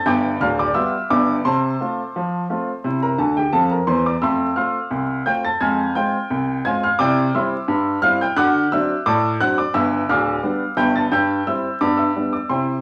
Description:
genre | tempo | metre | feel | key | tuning
ragtime piano | 87 BPM | 2/4 | straight | C major from 4.2 s | A4 = 444 Hz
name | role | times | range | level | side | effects
clear upright piano | solo | 0.0-12.8 s | D1 to A6 | -20 LUFS | equal | cassette tape
room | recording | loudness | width
moderate booth ambience, RT60 0.2 s | home recording on cassette, vinyl crackle, studio ambience | -20 LUFS | mono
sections
0.0-12.8 A section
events
upright piano fill 3.2-4.2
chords
0.1 G7; 1.4 F/C; 2.8 C; 4.2 F; 5.6 Fm; 7.0 C; 8.4 D7; 9.7 G7; 11.1 C/G; 11.8 G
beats
| 0.07 0.76 | 1.45 2.14 | 2.84 3.54 | 4.23 4.92 | 5.62 6.31 | 6.99 7.68 | 8.37 9.06 | 9.74 10.43 | 11.12 11.80 | 12.49

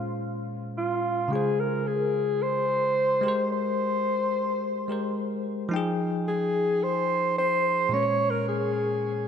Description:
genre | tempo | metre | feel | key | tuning
amapiano | 109 BPM | 4/4 | swing 55% on 16ths | F minor | A4 = 439 Hz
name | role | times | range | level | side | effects
breathy alto saxophone | melody | 0.0-9.3 s | F4 to Db5 | -25 LUFS | equal | low-pass filter, tape echo
bell-like tine electric piano | accompaniment | 0.0-9.3 s | Bb2 to G5 | -30 LUFS | left 1 dB | fast stereo tremolo
room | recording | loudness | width
wet plate reverb, RT60 2.6 s | dreamy mix soaked in reverb | -24 LUFS | side -7 dB against mid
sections
0.0-5.7 A section; 5.7-9.3 B section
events
drop 5.7-9.3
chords
0.0 Bbm9; 1.3 Dbmaj7; 3.2 Abmaj9; 5.7 Fm9; 7.9 Bbm7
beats
0.22 0.77 | 1.32 1.87 2.42 2.97 | 3.52 4.07 4.62 5.17 | 5.72 6.27 6.82 7.37 | 7.92 8.47 9.03

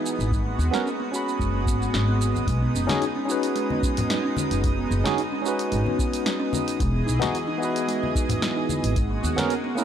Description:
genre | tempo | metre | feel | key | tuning
sunset chillout | 111 BPM | 4/4 | swing 53% on 16ths | B major | A4 = 440 Hz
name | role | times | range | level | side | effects
barky tine electric piano | accompaniment | 0.0-9.8 s | A#3 to B5 | -27 LUFS | moving between left 7 dB and right 8 dB | medium stereo tremolo, auto-pan, ping-pong delay
lush unison pad | sustained chords | 0.0-9.8 s | E3 to D#5 | -31 LUFS | equal | chorus
buzzing kalimba | arpeggios | 0.0-9.8 s | G#3 to E4 | -30 LUFS | equal | ping-pong delay
drifting glass-harmonics texture | texture | 0.0-9.8 s | D#6 | -36 LUFS | right 6 dB | chorus, built-in reverb
deep house drum kit | drums | 0.1-9.8 s | hi-hat, shaker, snare drum | -31 LUFS | right 1 dB | none
upright bass | bass | 0.2-9.3 s | E1 to D#2 | -24 LUFS | equal | none
electronic kick drum | drums | 0.3-9.1 s | none | -26 LUFS | equal | overdrive
congas | percussion | 2.9-9.5 s | none | -31 LUFS | left 3 dB | none
room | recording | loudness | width
light reverb | dark, warm production | -22 LUFS | side -9 dB against mid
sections
0.0-9.8 A section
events
none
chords
0.3 G#m11; 2.5 B69; 6.8 Emaj7; 9.0 G#m11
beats
| 0.32 0.86 1.40 1.94 | 2.48 3.02 3.56 4.10 | 4.64 5.18 5.72 6.26 | 6.80 7.34 7.88 8.42 | 8.96 9.51

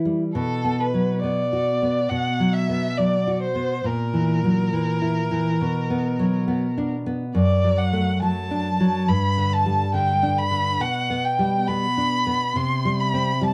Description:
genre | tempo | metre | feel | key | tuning
romantic duo for violin and classical guitar | 69 BPM | 4/4 | rubato | G major from 7.4 s | A4 = 439 Hz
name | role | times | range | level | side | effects
nylon-string guitar | accompaniment | 0.0-13.5 s | F#2 to F#4 | -24 LUFS | equal | none
clear violin | melody | 0.3-13.5 s | A4 to C6 | -26 LUFS | equal | none
room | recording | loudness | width
moderate studio reverb, RT60 0.5 s | dark, warm production | -22 LUFS | mono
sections
0.0-13.5 A section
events
none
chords
0.3 Bm; 3.8 F#7/A#; 5.6 Bm; 7.4 D/F#; 9.1 G5; 10.8 G/B; 12.6 C5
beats
| 0.35 1.23 2.11 2.98 | 3.85 4.72 5.61 6.48 | 7.35 8.22 9.09 9.94 | 10.80 11.68 12.56 13.42

